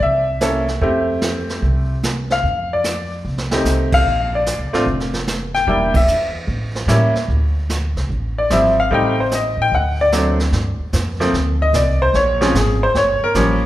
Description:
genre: jazz piano trio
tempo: 148 BPM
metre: 4/4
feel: swing 67% on 8ths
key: D minor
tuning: A4 = 441 Hz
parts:
  - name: bright upright piano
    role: melody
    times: 0.0-13.6 s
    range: F3 to G5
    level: -17 LUFS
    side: left 1 dB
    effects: none
  - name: upright bass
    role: bass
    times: 0.0-13.7 s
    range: E1 to A2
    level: -20 LUFS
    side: equal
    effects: none
  - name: jazz brush drum kit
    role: drums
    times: 0.0-13.7 s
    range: brushed snare drum, crash cymbal, hi-hat, kick drum, ride cymbal, snare drum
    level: -23 LUFS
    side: right 2 dB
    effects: none
room: wet recital hall reverb, RT60 1.5 s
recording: recorded in a church or concert hall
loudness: -15 LUFS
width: side -14 dB against mid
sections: 0.0-10.5 A section; 10.5-13.7 B section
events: drum fill 3.2-3.7; band accent 5.9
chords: 0.0 C7b9; 0.8 Fmaj9; 4.1 Bb; 5.7 Em7b5; 6.5 A7b9; 7.3 Dmadd9; 8.9 Am7b5; 9.7 D7; 10.5 G7sus4; 12.1 Bbm7; 13.0 Gm9b5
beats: 0.00 0.41 | 0.82 1.22 1.63 2.03 | 2.44 2.84 3.25 3.65 | 4.06 4.46 4.87 5.27 | 5.67 6.08 6.48 6.89 | 7.29 7.70 8.10 8.50 | 8.91 9.31 9.72 10.12 | 10.53 10.93 11.34 11.74 | 12.14 12.55 12.95 13.36

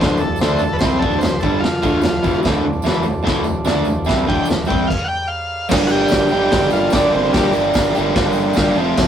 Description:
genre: garage rock duo or trio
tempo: 147 BPM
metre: 4/4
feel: straight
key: unclear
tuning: A4 = 439 Hz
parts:
  - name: overdriven combo organ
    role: melody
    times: 0.0-7.5 s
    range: Bb2 to G5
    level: -20 LUFS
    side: equal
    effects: none
  - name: overdriven combo organ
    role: sustained chords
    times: 0.0-9.1 s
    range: C4 to D5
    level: -30 LUFS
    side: right 3 dB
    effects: none
  - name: overdriven electric guitar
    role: riff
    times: 0.0-9.1 s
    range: D2 to G4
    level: -17 LUFS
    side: right 1 dB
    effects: none
  - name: growling picked electric bass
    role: bass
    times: 0.0-9.1 s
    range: D1 to D2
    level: -26 LUFS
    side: equal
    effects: overdrive
  - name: raw garage drum kit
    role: drums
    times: 0.0-9.1 s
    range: crash cymbal, hi-hat, kick drum, snare drum, toms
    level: -20 LUFS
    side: equal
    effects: none
  - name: tambourine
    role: percussion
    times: 0.1-9.1 s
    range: none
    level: -40 LUFS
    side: right 4 dB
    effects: none
room: light reverb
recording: rough rehearsal-room recording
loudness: -14 LUFS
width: side -9 dB against mid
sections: 0.0-5.7 A section; 5.7-9.1 B section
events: stop 4.9-5.7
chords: 0.0 Dm; 4.7 C5; 5.1 N.C.; 5.7 Gm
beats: 0.00 0.41 | 0.81 1.22 1.63 2.04 | 2.44 2.85 3.26 3.67 | 4.08 4.48 4.89 5.30 | 5.71 6.11 6.52 6.93 | 7.34 7.74 8.15 8.56 | 8.97

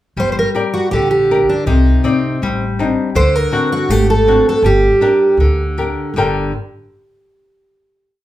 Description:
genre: fado-style ballad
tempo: 81 BPM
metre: 2/4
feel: rubato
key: G harmonic minor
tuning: A4 = 440 Hz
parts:
  - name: fingerpicked twelve-string acoustic guitar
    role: melody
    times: 0.2-5.4 s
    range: D4 to C5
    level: -14 LUFS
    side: right 2 dB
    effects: none
  - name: flamenco guitar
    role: accompaniment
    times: 0.2-6.5 s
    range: G2 to G5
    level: -17 LUFS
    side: left 3 dB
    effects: none
  - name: upright bass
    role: bass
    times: 0.2-6.5 s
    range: G1 to D2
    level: -17 LUFS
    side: equal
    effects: none
room: light reverb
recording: band playing live in one room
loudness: -12 LUFS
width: side -14 dB against mid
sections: 0.2-6.2 A section; 6.2-7.6 final chord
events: none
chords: 0.2 Gm; 1.7 Cmadd9; 3.2 D7; 4.6 Gm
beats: | 0.18 0.93 | 1.68 2.42 | 3.15 3.89 | 4.64 5.39 | 6.15

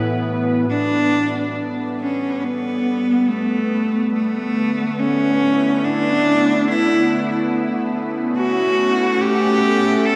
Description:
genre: ambient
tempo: free time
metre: none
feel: none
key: unclear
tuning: A4 = 440 Hz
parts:
  - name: evolving wavetable pad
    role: sustained chords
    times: 0.0-10.2 s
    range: A2 to F#5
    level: -25 LUFS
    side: equal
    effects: chorus, built-in reverb, shimmer reverb
  - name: organ-like drone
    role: drone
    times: 0.0-10.2 s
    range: B3 to F#4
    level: -28 LUFS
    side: equal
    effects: ensemble chorus, built-in reverb
  - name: rich cello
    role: melody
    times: 0.7-10.2 s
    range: A3 to A4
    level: -21 LUFS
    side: equal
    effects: shimmer reverb
room: wet cathedral reverb, RT60 5.6 s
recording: in a vast, echoing space, cassette tape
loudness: -19 LUFS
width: mono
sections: 0.7-10.2 A section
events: fade-in on ambient pad 0.7-10.2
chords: 0.0 Asus2; 0.7 G; 4.1 Dsus2; 7.5 Asus2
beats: free time

